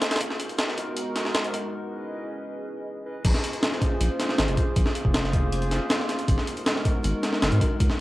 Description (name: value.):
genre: drum and bass, jungle.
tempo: 158 BPM.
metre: 4/4.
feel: straight.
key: Bb phrygian.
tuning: A4 = 440 Hz.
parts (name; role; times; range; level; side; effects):
breakbeat sampler-style drum kit; drums; 0.0-8.0 s; crash cymbal, hi-hat, kick drum, snare drum; -24 LUFS; equal; high-pass filter on snare, cassette tape, high-pass filter on hats, high-pass filter on kick, high-pass filter on cymbals, high-pass filter on room.
warbly tape-like pad; sustained chords; 0.2-8.0 s; Ab3 to Eb5; -30 LUFS; equal; chorus, built-in reverb, cassette tape.
saturated sub bass; bass; 0.2-7.9 s; F1 to Ab2; -25 LUFS; equal; tube saturation, high-pass filter.
room: light reverb.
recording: home recording on cassette.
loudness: -23 LUFS.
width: side -17 dB against mid.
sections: 0.0-3.2 A section; 3.2-8.0 B section.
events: build-up 0.0-3.2; break 1.7-3.2; drop 3.2-8.0.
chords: 0.2 Abm9; 1.7 Dbm9; 3.2 Bbm9; 6.3 Abm9.